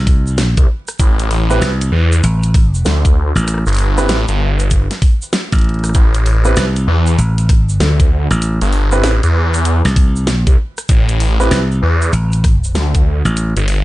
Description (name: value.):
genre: glitch hop.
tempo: 97 BPM.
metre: 4/4.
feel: swing 64% on 16ths.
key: A minor.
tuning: A4 = 440 Hz.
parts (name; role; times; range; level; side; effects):
slap bass; bass; 0.0-13.5 s; A1 to C2; -14 LUFS; equal; none.
dubstep drum kit; drums; 0.1-13.8 s; hi-hat, rim click, snare drum; -21 LUFS; equal; none.
electronic kick drum; drums; 0.1-13.0 s; none; -11 LUFS; equal; none.
egg shaker; percussion; 0.3-13.7 s; none; -30 LUFS; right 3 dB; none.
phased detuned saw bass; bass; 0.6-13.8 s; G1 to E2; -13 LUFS; equal; phaser, tube saturation.
dark baby grand piano; stabs; 1.5-11.6 s; C4 to B4; -21 LUFS; right 2 dB; sidechain pumping, ping-pong delay.
room: little or no reverb.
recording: vinyl crackle, nothing above 10.6 kHz.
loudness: -11 LUFS.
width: side -17 dB against mid.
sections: 0.0-13.8 A section.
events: none.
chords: 0.0 Am7.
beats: 0.38 | 1.00 1.62 2.23 2.85 | 3.47 4.09 4.71 5.33 | 5.95 6.56 7.18 7.80 | 8.42 9.04 9.66 10.28 | 10.89 11.51 12.13 12.75 | 13.37.